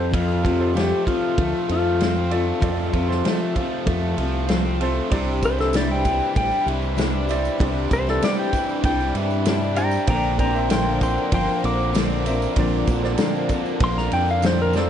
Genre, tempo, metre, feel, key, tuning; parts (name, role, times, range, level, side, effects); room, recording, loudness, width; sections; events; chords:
folk rock and heartland rock; 97 BPM; 4/4; straight; C mixolydian; A4 = 440 Hz
pedal steel guitar; melody; 0.0-14.9 s; F4 to D6; -24 LUFS; left 2 dB; analog delay
bright concert grand piano; accompaniment; 0.0-14.9 s; E4 to E5; -32 LUFS; right 4 dB; plate reverb
picked steel-string acoustic guitar; accompaniment; 0.0-14.9 s; Bb2 to Bb4; -26 LUFS; left 5 dB; plate reverb
biting overdriven guitar; riff; 0.0-14.9 s; F2 to D4; -28 LUFS; right 2 dB
fingered electric bass; bass; 0.0-14.9 s; G1 to G2; -25 LUFS; right 1 dB
natural country drum kit; drums; 0.1-14.9 s; kick drum, ride cymbal, snare drum; -26 LUFS; right 1 dB; vintage 12-bit sampler grit
dark studio string section; sustained chords; 5.1-14.9 s; Bb3 to C5; -31 LUFS; equal; plate reverb
tambourine; percussion; 5.4-14.9 s; -46 LUFS; right 13 dB
moderate small room reverb, RT60 0.5 s; nothing above 10.5 kHz; -19 LUFS; side -9 dB against mid
0.0-14.9 A section
pedal steel guitar solo 0.0-14.9; drum fill 14.7
0.0 F; 5.1 Cadd9; 10.1 Bbadd9